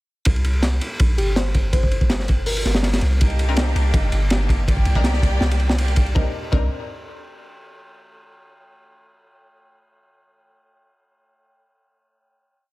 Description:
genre	drum and bass, jungle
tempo	163 BPM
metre	4/4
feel	swing 53% on 16ths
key	C minor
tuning	A4 = 442 Hz
part	long sustained 808-style bass	bass	0.3-6.7 s	G1 to C2	-20 LUFS	equal	tube saturation
part	crunchy breakbeat drum kit	drums	0.3-6.6 s	hi-hat, kick drum, ride cymbal, snare drum	-20 LUFS	equal	none
part	bell-like FM electric piano	melody	1.2-3.0 s	G4 to C5	-30 LUFS	left 1 dB	chorus, tremolo, dub echo
part	clear studio string section	sustained chords	3.2-6.3 s	Eb3 to D5	-28 LUFS	equal	none
part	orchestra-hit-like synth stab	stabs	3.5-6.7 s	C4 to Bb4	-31 LUFS	left 4 dB	built-in reverb, cassette tape, dub echo
room	small room ambience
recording	none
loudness	-17 LUFS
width	side -20 dB against mid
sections	0.3-6.2 drop; 6.2-7.6 final chord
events	drop 0.3-6.2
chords	0.3 Cm9

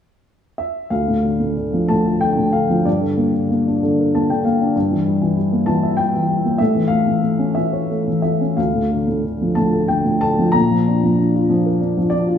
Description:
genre	classical, lyrical solo piano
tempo	58-66 BPM (dotted quarters)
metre	6/8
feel	rubato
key	D minor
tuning	A4 = 440 Hz
part	dark upright piano	solo	0.6-12.4 s	D2 to Bb5	-15 LUFS	left 1 dB	none
room	moderate scoring stage reverb, RT60 1.9 s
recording	recorded in a church or concert hall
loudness	-15 LUFS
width	side -8 dB against mid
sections	0.9-12.4 A section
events	upright piano fill 3.8-4.8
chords	0.0 N.C.; 0.9 Dm; 2.9 Gm; 4.8 Edim/G; 6.6 A; 8.6 Dm; 10.5 Bb

